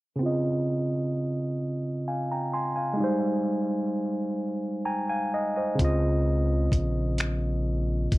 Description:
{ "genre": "slow six-eight R&B", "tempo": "43 BPM (dotted quarters)", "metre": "6/8", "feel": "straight", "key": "unclear", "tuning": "A4 = 440 Hz", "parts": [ { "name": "barky tine electric piano", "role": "accompaniment", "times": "0.2-8.2 s", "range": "Db3 to C6", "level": "-26 LUFS", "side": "right 1 dB", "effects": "overdrive, low-pass filter" }, { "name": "round analog bass", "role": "bass", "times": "5.8-8.2 s", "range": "G1 to Db2", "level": "-26 LUFS", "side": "left 1 dB", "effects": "none" }, { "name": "dusty soul sampler-style drum kit", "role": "drums", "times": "5.8-8.2 s", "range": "finger snaps, hi-hat, kick drum", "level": "-24 LUFS", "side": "equal", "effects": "none" } ], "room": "little or no reverb", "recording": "dry, close 1970s-style studio recording", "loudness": "-25 LUFS", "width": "side -18 dB against mid", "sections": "0.2-8.2 A section", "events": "filter sweep on tine electric piano 0.2-8.2; tine electric piano fill 4.4-5.8", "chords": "0.2 Dbmaj9; 3.0 Abmaj7; 5.8 Dbmaj9", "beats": "| 0.21 1.61 | 3.00 4.40 | 5.80 7.19" }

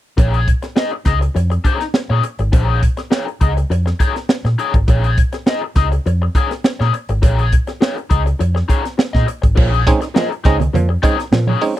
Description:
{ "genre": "funk", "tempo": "102 BPM", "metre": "4/4", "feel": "straight", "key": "Bb minor", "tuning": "A4 = 439 Hz", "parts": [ { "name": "raw garage guitar", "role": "accompaniment", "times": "0.2-11.8 s", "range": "Eb4 to Eb5", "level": "-21 LUFS", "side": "left 5 dB", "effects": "wah, overdrive" }, { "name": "vintage muted fingered electric bass", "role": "bass", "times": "0.2-11.5 s", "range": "Ab1 to Bb2", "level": "-16 LUFS", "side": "equal", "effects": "none" }, { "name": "crisp fusion drum kit", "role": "drums", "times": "0.2-11.8 s", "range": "crash cymbal, hi-hat, kick drum, snare drum", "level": "-16 LUFS", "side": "equal", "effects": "none" }, { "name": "muted clav", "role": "stabs", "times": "9.6-11.8 s", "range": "Bb2 to Eb4", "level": "-19 LUFS", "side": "right 4 dB", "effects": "none" }, { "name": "congas", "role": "percussion", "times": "9.6-11.6 s", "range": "none", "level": "-23 LUFS", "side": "right 6 dB", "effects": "none" } ], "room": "little or no reverb", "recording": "dry, close 1970s-style studio recording", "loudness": "-14 LUFS", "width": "side -14 dB against mid", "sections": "0.2-9.6 A section; 9.6-11.8 B section", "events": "none", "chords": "0.2 Bbm7; 9.6 Bbm11", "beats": "| 0.18 0.77 1.35 1.94 | 2.53 3.12 3.70 4.29 | 4.88 5.46 6.05 6.64 | 7.23 7.82 8.40 8.99 | 9.57 10.16 10.75 11.33" }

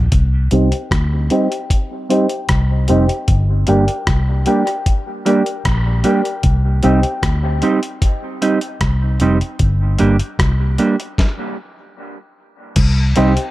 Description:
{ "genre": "dub reggae", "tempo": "76 BPM", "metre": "4/4", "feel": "straight", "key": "C minor", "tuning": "A4 = 440 Hz", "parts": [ { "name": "vintage muted fingered electric bass", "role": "bass", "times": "0.0-13.4 s", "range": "F1 to D2", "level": "-15 LUFS", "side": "equal", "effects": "none" }, { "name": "dusty soul sampler-style drum kit", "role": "drums", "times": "0.1-13.5 s", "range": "crash cymbal, hi-hat, kick drum, rim click, snare drum", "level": "-18 LUFS", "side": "equal", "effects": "none" }, { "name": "mellow electric guitar", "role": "accompaniment", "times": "0.5-13.3 s", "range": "G3 to G4", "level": "-19 LUFS", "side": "right 3 dB", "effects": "high-pass filter, low-pass filter, dub echo" }, { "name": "dark upright piano", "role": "stabs", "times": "0.5-7.0, 13.2-13.4 s", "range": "G4 to G5", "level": "-22 LUFS", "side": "left 3 dB", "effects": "high-pass filter, low-pass filter, dub echo" } ], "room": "light reverb", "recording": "none", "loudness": "-14 LUFS", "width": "side -16 dB against mid", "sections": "0.1-12.8 A section", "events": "filter sweep 0.1-12.8; stop 11.2-12.8", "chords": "0.1 Cm; 3.3 Gm; 6.4 Cm; 9.6 N.C.; 12.8 Cm", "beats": "| 0.12 0.91 1.70 2.49 | 3.28 4.07 4.86 5.65 | 6.44 7.23 8.02 8.81 | 9.60 10.39 11.18 11.97 | 12.77" }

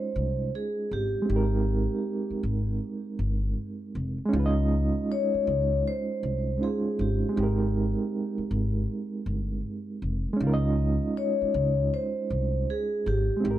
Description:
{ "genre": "lo-fi hip hop", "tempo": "79 BPM", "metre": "4/4", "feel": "swing 66% on 16ths", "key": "Db lydian", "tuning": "A4 = 441 Hz", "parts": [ { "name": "vibraphone with soft mallets", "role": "melody", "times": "0.0-13.6 s", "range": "G4 to Db5", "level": "-30 LUFS", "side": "moving between left 9 dB and right 5 dB", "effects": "auto-pan, plate reverb" }, { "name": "reed electric piano", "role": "accompaniment", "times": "0.0-13.6 s", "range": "Ab3 to Eb5", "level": "-29 LUFS", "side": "right 3 dB", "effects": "fast tremolo, cassette tape, plate reverb" }, { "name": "upright bass", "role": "bass", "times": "0.2-13.6 s", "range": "F1 to Db2", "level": "-28 LUFS", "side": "left 1 dB", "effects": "none" } ], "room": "light reverb", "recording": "dark, warm production", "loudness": "-25 LUFS", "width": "side -13 dB against mid", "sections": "0.0-13.6 A section", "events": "none", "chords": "0.0 Dbmaj9; 1.3 Abmaj9; 4.3 Dbmaj9; 7.4 Abmaj9; 10.4 Dbmaj9", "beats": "0.52 | 1.28 2.04 2.80 3.56 | 4.32 5.08 5.84 6.60 | 7.36 8.12 8.88 9.64 | 10.40 11.16 11.91 12.68 | 13.43" }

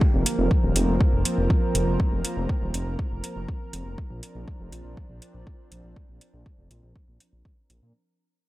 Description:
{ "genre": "melodic techno", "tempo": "121 BPM", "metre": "4/4", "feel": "straight", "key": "unclear", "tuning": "A4 = 440 Hz", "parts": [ { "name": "lush unison pad", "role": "sustained chords", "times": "0.0-7.9 s", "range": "F3 to Bb4", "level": "-30 LUFS", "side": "right 1 dB", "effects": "chorus, sidechain pumping" }, { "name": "electronic kick drum", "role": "drums", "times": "0.0-7.6 s", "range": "none", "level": "-23 LUFS", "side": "equal", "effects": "overdrive, small room reverb" }, { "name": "dark detuned saw bass", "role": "bass", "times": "0.1-7.9 s", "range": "Eb1 to Bb2", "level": "-27 LUFS", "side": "equal", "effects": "transformer saturation, sidechain pumping" }, { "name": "electronic hi-hat", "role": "drums", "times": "0.3-7.8 s", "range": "none", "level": "-28 LUFS", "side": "equal", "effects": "overdrive, small room reverb" } ], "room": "little or no reverb", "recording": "dry, gritty hardware recording, transformer saturation", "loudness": "-22 LUFS", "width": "side -17 dB against mid", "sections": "0.0-7.9 A section", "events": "fade-out 0.0-7.9; filter sweep on detuned saw bass 0.0-7.9", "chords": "0.0 Fsus4; 4.0 Bbadd9", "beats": "| 0.01 0.51 1.00 1.50 | 2.00 2.49 2.99 3.48 | 3.98 4.48 4.97 5.47 | 5.96 6.46 6.96 7.45" }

